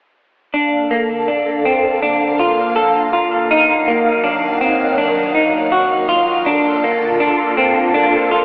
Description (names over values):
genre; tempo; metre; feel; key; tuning
dream pop; 81 BPM; 4/4; straight; Bb major; A4 = 440 Hz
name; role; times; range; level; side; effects
phased string machine; sustained chords; 0.7-8.4 s; D3 to F5; -17 LUFS; equal; ensemble chorus, phaser, shimmer reverb
semi-hollow electric guitar; arpeggios; 0.5-8.4 s; Bb3 to A4; -14 LUFS; equal; lush chorus, digital delay, shimmer reverb
room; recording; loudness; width
wet plate reverb, RT60 2.5 s; telephone sound; -13 LUFS; side -31 dB against mid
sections
0.5-8.4 A section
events
none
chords
0.5 Bbmaj7; 3.5 Ebmadd9; 6.5 Bbmaj7